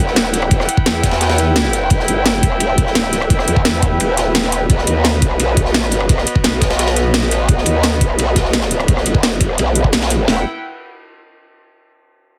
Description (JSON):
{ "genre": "dark technical drum and bass", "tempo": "172 BPM", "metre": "4/4", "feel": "straight", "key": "E harmonic minor", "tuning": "A4 = 437 Hz", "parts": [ { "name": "rich chamber string section", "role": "sustained chords", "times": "0.0-10.4 s", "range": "B3 to G5", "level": "-24 LUFS", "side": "equal", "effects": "sidechain pumping, low-pass filter" }, { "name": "growl bass", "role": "bass", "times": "0.0-10.4 s", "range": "E1 to E2", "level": "-19 LUFS", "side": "equal", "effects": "chorus, overdrive, sidechain pumping" }, { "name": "crunchy breakbeat drum kit", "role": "drums", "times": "0.1-10.2 s", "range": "ride cymbal, snare drum", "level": "-27 LUFS", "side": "equal", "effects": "high-pass filter on cymbals, high-pass filter on snare, high-pass filter on room" }, { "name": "drum and bass drum kit", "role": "drums", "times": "0.2-10.2 s", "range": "hi-hat, rim click, snare drum", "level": "-20 LUFS", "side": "equal", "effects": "none" }, { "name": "drum and bass drum kit", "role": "drums", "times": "0.5-10.4 s", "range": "kick drum, snare drum", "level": "-18 LUFS", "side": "equal", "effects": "none" } ], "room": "light reverb", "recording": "heavily compressed radio sound", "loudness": "-15 LUFS", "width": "mono", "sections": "0.0-10.3 A section; 10.3-11.7 B section", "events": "filter sweep on string section 0.0-10.3", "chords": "0.0 Em; 4.7 B; 10.3 Em" }